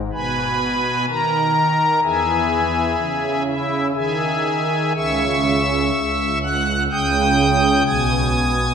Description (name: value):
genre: classical, chorale-style piece for pipe organ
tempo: 62 BPM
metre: 3/4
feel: rubato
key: G# minor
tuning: A4 = 440 Hz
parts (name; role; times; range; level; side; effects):
- pipe organ, strings celeste; solo; 0.0-8.7 s; B1 to G#6; -16 LUFS; equal; none
room: wet church reverb, RT60 2.8 s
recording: minimal, uncompressed stereo recording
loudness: -16 LUFS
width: side -7 dB against mid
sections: 0.0-8.7 A section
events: none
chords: 0.0 G#m; 2.0 Emaj7; 5.0 C#madd11; 6.9 D#7/C#; 7.9 G#m/B